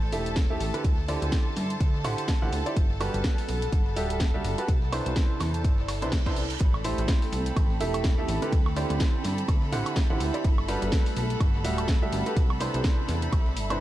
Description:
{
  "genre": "piano house",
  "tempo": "125 BPM",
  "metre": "4/4",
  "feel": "swing 57% on 16ths",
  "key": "A dorian",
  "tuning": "A4 = 437 Hz",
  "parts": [
    { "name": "clear studio violin section", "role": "sustained chords", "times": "0.0-13.8 s", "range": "A4 to B5", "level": "-37 LUFS", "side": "right 1 dB", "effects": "sidechain pumping" },
    { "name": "clear baby grand piano", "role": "riff", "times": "0.0-13.8 s", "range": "C3 to F#5", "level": "-32 LUFS", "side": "right 2 dB", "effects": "sidechain pumping, dub echo" },
    { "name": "plucky analog bass", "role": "bass", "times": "0.0-13.8 s", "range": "D1 to G2", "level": "-30 LUFS", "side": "equal", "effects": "sidechain pumping" },
    { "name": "dusty soul sampler-style drum kit", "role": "drums", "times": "0.0-13.7 s", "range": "hi-hat, ride cymbal, snare drum", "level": "-46 LUFS", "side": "right 1 dB", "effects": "none" },
    { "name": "warbly tape-like pad", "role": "texture", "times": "0.0-13.8 s", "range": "A3 to C6", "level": "-37 LUFS", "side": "right 1 dB", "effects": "chorus, built-in reverb, sidechain pumping" },
    { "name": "house drum kit", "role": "drums", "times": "0.1-13.8 s", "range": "hi-hat, snare drum, woodblock", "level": "-35 LUFS", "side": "equal", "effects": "small room reverb" },
    { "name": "electronic kick drum", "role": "drums", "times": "0.4-13.4 s", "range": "none", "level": "-24 LUFS", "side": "equal", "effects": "small room reverb" },
    { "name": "reverse cymbal and impact", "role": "sound effects", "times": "5.9-8.5 s", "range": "none", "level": "-40 LUFS", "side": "right 2 dB", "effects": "none" }
  ],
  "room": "digital ambience",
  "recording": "dark, warm production",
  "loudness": "-24 LUFS",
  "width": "side -14 dB against mid",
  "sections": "0.0-6.6 A section; 6.6-13.8 B section",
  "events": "reverse cymbal 5.9-6.6; drop 6.6-13.8; impact 6.6-8.5",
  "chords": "0.0 Am7; 0.8 D9sus4; 2.8 Gmaj9; 4.7 Cmaj9; 6.6 Am7; 8.5 D9sus4; 10.4 Gmaj9; 12.4 Cmaj9"
}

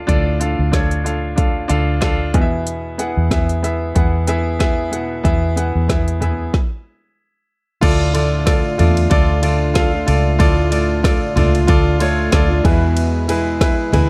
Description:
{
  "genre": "piano-driven pop",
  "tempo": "93 BPM",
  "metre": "4/4",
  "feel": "swing 56% on 16ths",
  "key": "unclear",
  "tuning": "A4 = 440 Hz",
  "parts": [
    { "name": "bright concert grand piano", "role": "accompaniment", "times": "0.0-14.1 s", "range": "A2 to A5", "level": "-22 LUFS", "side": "equal", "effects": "none" },
    { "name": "vintage muted fingered electric bass", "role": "bass", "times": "0.0-14.1 s", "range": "C#2 to E2", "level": "-20 LUFS", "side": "equal", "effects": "none" },
    { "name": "deep house drum kit", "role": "drums", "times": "0.1-14.1 s", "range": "crash cymbal, hi-hat, kick drum, ride cymbal, snare drum, toms", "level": "-20 LUFS", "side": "equal", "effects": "none" },
    { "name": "fingerpicked plugged-in steel-string acoustic guitar", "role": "riff", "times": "7.8-14.1 s", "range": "E2 to F4", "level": "-24 LUFS", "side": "equal", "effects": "none" }
  ],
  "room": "light reverb",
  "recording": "dark, warm production",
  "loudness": "-17 LUFS",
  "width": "mono",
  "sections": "0.0-7.8 A section; 7.8-14.1 B section",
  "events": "stop 6.5-7.8; grand piano fill 12.0-13.0",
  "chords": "0.0 Dm; 2.3 E; 7.8 Dm; 12.6 E"
}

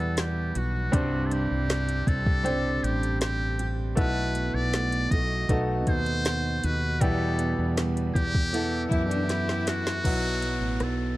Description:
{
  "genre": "pop ballad",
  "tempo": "79 BPM",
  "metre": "4/4",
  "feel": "straight",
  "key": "E minor",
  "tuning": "A4 = 439 Hz",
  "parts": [
    { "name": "trumpet with metal mute", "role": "melody", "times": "0.0-11.2 s", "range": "F#4 to D#5", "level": "-31 LUFS", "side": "equal", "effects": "none" },
    { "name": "clear grand piano", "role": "accompaniment", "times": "0.0-11.2 s", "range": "G2 to F#5", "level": "-31 LUFS", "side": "equal", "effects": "none" },
    { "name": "picked steel-string acoustic guitar", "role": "arpeggios", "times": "0.0-11.2 s", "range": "E2 to G4", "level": "-34 LUFS", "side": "right 4 dB", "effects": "tape echo" },
    { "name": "mellow fretless electric bass", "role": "bass", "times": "0.0-11.2 s", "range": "A1 to F#2", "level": "-29 LUFS", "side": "equal", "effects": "none" },
    { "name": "smooth R&B drum kit", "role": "drums", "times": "0.2-11.0 s", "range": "crash cymbal, hi-hat, kick drum, rim click, snare drum", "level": "-27 LUFS", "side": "equal", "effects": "none" },
    { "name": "bright chamber cello section", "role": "second line", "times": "8.9-10.0 s", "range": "D4 to E4", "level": "-32 LUFS", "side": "left 2 dB", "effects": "none" },
    { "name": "downlifter", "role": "sound effects", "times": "10.0-11.2 s", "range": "none", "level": "-39 LUFS", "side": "equal", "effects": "none" }
  ],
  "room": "small room ambience",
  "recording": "dark, warm production",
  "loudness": "-24 LUFS",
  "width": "side -17 dB against mid",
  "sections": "0.0-10.0 A section; 10.0-11.2 B section",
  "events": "drum fill 9.3-10.0",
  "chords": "0.0 Emadd9; 0.9 Csus2; 4.0 B7sus4; 5.5 B7; 7.0 Emadd9; 10.0 Bsus4"
}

